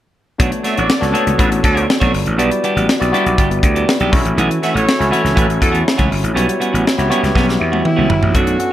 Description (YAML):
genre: polished 1980s jazz-funk pop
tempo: 121 BPM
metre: 4/4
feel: straight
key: unclear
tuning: A4 = 437 Hz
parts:
  - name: overdriven tine electric piano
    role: accompaniment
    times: 0.4-8.7 s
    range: B3 to B5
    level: -19 LUFS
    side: left 1 dB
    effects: wide subtle chorus
  - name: clean electric guitar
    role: riff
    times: 0.4-8.7 s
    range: E3 to C#5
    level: -20 LUFS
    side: right 2 dB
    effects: wide subtle chorus
  - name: gritty slap bass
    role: bass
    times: 0.4-8.6 s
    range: G1 to E2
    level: -18 LUFS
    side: equal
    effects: overdrive
  - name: crisp fusion drum kit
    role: drums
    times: 0.4-8.7 s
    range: hi-hat, kick drum, snare drum, toms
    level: -17 LUFS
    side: equal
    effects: gated reverb
  - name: warm horn section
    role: second line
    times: 0.6-5.8 s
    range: D4 to E5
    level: -22 LUFS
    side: right 1 dB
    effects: none
  - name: breathy alto saxophone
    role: melody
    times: 7.9-8.7 s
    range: E4 to F#4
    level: -19 LUFS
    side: right 1 dB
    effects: none
room: moderate plate reverb, RT60 1.1 s, small room reverb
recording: bright 1980s-style digital production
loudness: -12 LUFS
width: side -12 dB against mid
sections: 0.4-8.3 A section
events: drum fill 7.4-8.3; tine electric piano fill 7.4-8.3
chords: 0.4 Bm9; 2.4 Em7; 4.1 A13